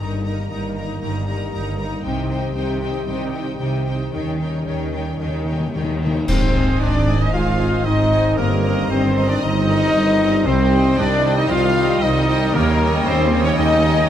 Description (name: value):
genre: cinematic, heroic adventure film score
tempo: 115 BPM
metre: 4/4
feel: straight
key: Eb major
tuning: A4 = 444 Hz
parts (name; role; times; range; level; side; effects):
- rich symphonic violin section; melody; 0.0-14.1 s; Bb4 to Bb5; -28 LUFS; left 2 dB; none
- rich symphonic violin section; second line; 0.0-14.1 s; Bb4 to Bb5; -32 LUFS; left 1 dB; none
- rich symphonic viola section; accompaniment; 0.0-14.1 s; Eb4 to Eb5; -30 LUFS; equal; none
- bright trombone section; sustained chords; 0.0-14.1 s; Db3 to Db4; -29 LUFS; right 4 dB; none
- concert harp; arpeggios; 0.0-14.1 s; G2 to Eb5; -28 LUFS; left 8 dB; none
- rich studio double bass section; bass; 0.0-14.0 s; G1 to Eb2; -24 LUFS; right 2 dB; none
- rich symphonic cello section; bass; 0.0-14.0 s; C2 to Eb3; -25 LUFS; right 1 dB; none
- cymbal swell, clash cymbals and concert bass drum; percussion; 2.1-7.3 s; none; -26 LUFS; equal; none
- timpani; percussion; 4.1-6.2, 12.5-13.3 s; Eb3; -27 LUFS; left 3 dB; none
- bright oboe; second line; 6.3-14.1 s; Bb4 to F5; -29 LUFS; right 2 dB; none
- small flute group; second line; 6.3-14.1 s; Bb4 to F5; -29 LUFS; equal; none
- mellow French horn section; sustained chords; 6.3-14.1 s; Bb3 to F4; -21 LUFS; left 3 dB; none
- mellow trumpet; stabs; 6.3-14.1 s; Bb3 to F4; -25 LUFS; right 1 dB; none
- dark tuba; bass; 6.3-14.0 s; G1 to Eb2; -25 LUFS; right 3 dB; none
room: moderate concert hall reverb, RT60 1.8 s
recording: none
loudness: -16 LUFS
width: side -10 dB against mid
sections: 0.0-6.3 A section; 6.3-14.1 B section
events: timpani fill 4.1-6.3; band accent 6.3-6.8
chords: 0.0 Eb/G; 2.1 Cm; 4.1 Eb7; 6.3 Ab; 8.4 Eb/G; 10.5 Cm; 12.5 Eb7